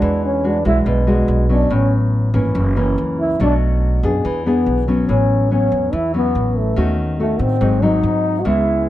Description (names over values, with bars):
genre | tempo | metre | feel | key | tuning
bossa nova | 142 BPM | 4/4 | straight | A major | A4 = 439 Hz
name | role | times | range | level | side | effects
breathy trombone | melody | 0.0-8.9 s | A3 to F#4 | -20 LUFS | equal | plate reverb
nylon-string guitar | accompaniment | 0.0-8.9 s | F#2 to G#4 | -18 LUFS | left 1 dB | none
upright bass | bass | 0.0-8.9 s | F#1 to A2 | -19 LUFS | right 1 dB | none
room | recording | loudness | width
light reverb | close, detailed microphones | -14 LUFS | side -14 dB against mid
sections
0.0-5.1 A section; 5.1-8.9 B section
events
trombone solo 0.0-5.1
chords
0.0 E9; 1.7 A69; 2.5 F#7; 3.4 Bm7; 4.2 E7; 5.1 A69; 6.8 D#m7b5; 7.6 G#7